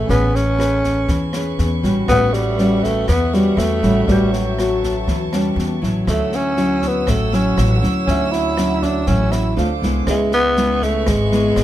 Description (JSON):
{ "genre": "bossa nova", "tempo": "120 BPM", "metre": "4/4", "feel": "straight", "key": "A major", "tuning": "A4 = 440 Hz", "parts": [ { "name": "growling tenor saxophone", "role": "melody", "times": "0.0-11.6 s", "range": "F#3 to E4", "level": "-19 LUFS", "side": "equal", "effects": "none" }, { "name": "nylon-string guitar", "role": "accompaniment", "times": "0.0-11.6 s", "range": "G#2 to B4", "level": "-20 LUFS", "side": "left 1 dB", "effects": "none" }, { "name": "warm baby grand piano", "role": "accompaniment", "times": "0.0-11.6 s", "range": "C#4 to G6", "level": "-30 LUFS", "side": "right 7 dB", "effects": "none" }, { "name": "warm studio violin section", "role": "sustained chords", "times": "0.0-11.6 s", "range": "B4 to E6", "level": "-28 LUFS", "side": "right 1 dB", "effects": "none" }, { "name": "upright bass", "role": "bass", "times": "0.0-11.6 s", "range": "G#1 to E2", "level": "-21 LUFS", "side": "equal", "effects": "none" }, { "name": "open jazz drum kit", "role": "drums", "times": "0.1-11.6 s", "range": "kick drum, rim click, snare drum", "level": "-26 LUFS", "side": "left 1 dB", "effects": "none" } ], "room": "little or no reverb", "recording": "minimal, uncompressed stereo recording", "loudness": "-15 LUFS", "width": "side -13 dB against mid", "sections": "0.0-11.6 A section", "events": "none", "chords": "0.0 Amaj9; 2.1 A13; 6.1 Dmaj9; 9.6 Dm7; 10.1 C#m7" }